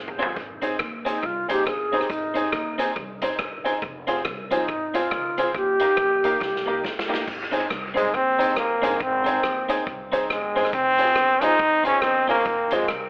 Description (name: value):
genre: ska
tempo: 139 BPM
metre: 4/4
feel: swing 60% on 8ths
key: Ab major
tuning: A4 = 440 Hz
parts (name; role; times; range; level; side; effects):
- upright bass; bass; 0.0-13.1 s; F1 to Eb2; -43 LUFS; equal; none
- swinging big-band drum kit; drums; 0.1-13.0 s; crash cymbal, hi-hat, kick drum, rim click, snare drum, toms; -33 LUFS; equal; tape echo
- clean electric guitar; accompaniment; 0.2-12.8 s; Bb3 to Ab4; -32 LUFS; equal; none
- tack piano; stabs; 0.2-12.8 s; Bb3 to C5; -30 LUFS; equal; none
- alto flute; melody; 1.1-6.8 s; Eb4 to Ab4; -28 LUFS; equal; tape echo
- brilliant trombone; melody; 8.0-12.9 s; Ab3 to Eb4; -23 LUFS; equal; tape echo
room: wet studio reverb, RT60 0.6 s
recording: telephone sound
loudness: -23 LUFS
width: mono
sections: 0.0-7.3 A section; 7.3-13.1 B section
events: drum fill 0.0-0.4, 6.4-7.3; trombone solo 7.3-13.1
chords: 0.4 Ab; 3.8 Fm; 5.5 Eb; 7.3 Ab; 10.7 Fm